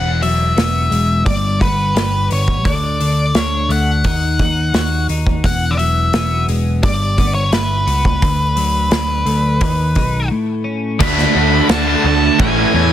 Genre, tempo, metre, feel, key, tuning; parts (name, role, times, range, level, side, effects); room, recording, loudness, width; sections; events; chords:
quiet-loud alternative rock; 86 BPM; 4/4; straight; A4 = 440 Hz
octave-fuzz lead guitar; melody; 0.0-12.9 s; B4 to B5; -19 LUFS; left 1 dB; distortion
twelve-string electric guitar; arpeggios; 0.0-11.0 s; E2 to G4; -22 LUFS; left 4 dB; analog chorus
picked electric bass; bass; 0.0-12.9 s; E1 to E2; -18 LUFS; equal
loose indie drum kit; drums; 0.2-12.6 s; crash cymbal, hi-hat, kick drum, snare drum; -19 LUFS; equal
rich studio string section; sustained chords; 11.0-12.9 s; A4 to E6; -28 LUFS; left 1 dB
cranked stack guitar; riff; 11.0-12.9 s; A2 to F#4; -18 LUFS; left 14 dB; overdrive
thick fuzz guitar; riff; 11.0-12.9 s; A2 to A4; -16 LUFS; right 14 dB; distortion
small room ambience; dense, heavily limited modern master; -13 LUFS; side -11 dB against mid
0.0-11.0 A section; 11.0-12.9 B section
break 10.3-11.0
0.0 Eadd9; 1.3 G; 2.7 D5; 4.0 D#m; 5.4 Eadd9; 6.8 G6; 8.2 D; 9.6 B/D#; 10.3 A; 11.0 D6; 12.4 A